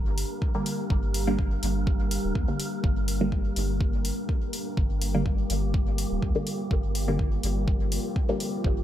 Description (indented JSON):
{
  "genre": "dub techno",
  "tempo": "124 BPM",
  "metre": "4/4",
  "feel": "swing 54% on 16ths",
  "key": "G minor",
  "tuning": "A4 = 440 Hz",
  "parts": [
    { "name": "deep dark ambient pad", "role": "sustained chords", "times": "0.0-8.8 s", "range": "G3 to G4", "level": "-33 LUFS", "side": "left 1 dB", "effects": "chorus, built-in reverb, sidechain pumping" },
    { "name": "soft dub sub bass", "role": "bass", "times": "0.0-8.8 s", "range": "D1 to D2", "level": "-29 LUFS", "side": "equal", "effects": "sidechain pumping" },
    { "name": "wind-like tuned noise texture", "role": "texture", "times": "0.0-8.8 s", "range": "Bb3 to Bb4", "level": "-38 LUFS", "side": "equal", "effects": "built-in reverb, sidechain pumping" },
    { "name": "electronic hi-hat", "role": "drums", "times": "0.2-8.5 s", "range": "none", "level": "-35 LUFS", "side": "left 2 dB", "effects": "none" },
    { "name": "electronic kick drum", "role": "drums", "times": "0.4-8.7 s", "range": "none", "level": "-26 LUFS", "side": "equal", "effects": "none" },
    { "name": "filtered dub chord stab", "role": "stabs", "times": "0.5-8.6 s", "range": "D3 to Bb3", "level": "-31 LUFS", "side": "equal", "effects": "chorus, phaser, sidechain pumping, dub echo" }
  ],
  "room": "digital ambience",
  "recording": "bright 1980s-style digital production",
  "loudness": "-24 LUFS",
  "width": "side -12 dB against mid",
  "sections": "0.0-8.8 A section",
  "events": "filter sweep on synth stab 0.0-8.8",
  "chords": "0.0 Gm"
}